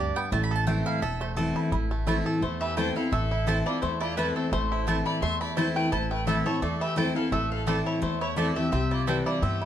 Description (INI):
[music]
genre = bluegrass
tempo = 171 BPM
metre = 4/4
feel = swing 54% on 8ths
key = A minor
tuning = A4 = 435 Hz
[part]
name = bluegrass banjo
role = melody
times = 0.0-9.7 s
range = E3 to A4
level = -33 LUFS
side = right 4 dB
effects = none
[part]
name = picked steel-string acoustic guitar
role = accompaniment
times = 0.0-9.7 s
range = E2 to E4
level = -29 LUFS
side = left 2 dB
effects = none
[part]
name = mandolin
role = stabs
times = 0.0-9.2 s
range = A3 to B5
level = -32 LUFS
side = right 5 dB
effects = none
[part]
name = upright bass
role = bass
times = 0.0-9.7 s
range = E1 to G2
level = -30 LUFS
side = equal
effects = none
[part]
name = mandolin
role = melody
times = 2.4-9.7 s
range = A4 to C6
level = -32 LUFS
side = left 1 dB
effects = none
[part]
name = bright fiddle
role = second line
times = 2.4-9.7 s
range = C4 to E5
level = -36 LUFS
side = left 6 dB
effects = none
[sound]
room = moderate studio reverb, RT60 0.6 s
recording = dark, warm production, lossy compression artefacts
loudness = -24 LUFS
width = side -10 dB against mid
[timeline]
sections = 0.0-1.7 A section; 1.7-9.7 B section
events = mandolin solo 0.0-1.7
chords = 0.3 Am; 8.7 C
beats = | 0.32 0.67 1.02 1.37 | 1.72 2.07 2.42 2.77 | 3.12 3.47 3.82 4.17 | 4.52 4.87 5.22 5.57 | 5.92 6.27 6.62 6.97 | 7.32 7.67 8.03 8.38 | 8.73 9.08 9.43